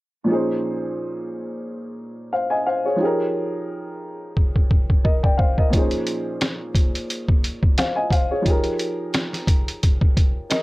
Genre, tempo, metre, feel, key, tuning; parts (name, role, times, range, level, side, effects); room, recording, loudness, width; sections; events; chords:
hip hop, boom-bap hip-hop; 88 BPM; 4/4; swing 56% on 16ths; Bb minor; A4 = 441 Hz
dark upright piano; accompaniment; 0.2-10.6 s; Bb2 to Ab5; -23 LUFS; equal; high-pass filter, low-pass filter
trip hop sampler-style drum kit; drums; 4.4-10.6 s; hi-hat, kick drum, snare drum; -18 LUFS; equal
light reverb; -19 LUFS; side -20 dB against mid
0.3-10.6 A section
drum fill 4.4-5.7
0.3 Bbm11; 3.0 Fm11; 5.7 Bbm11; 8.5 Fm11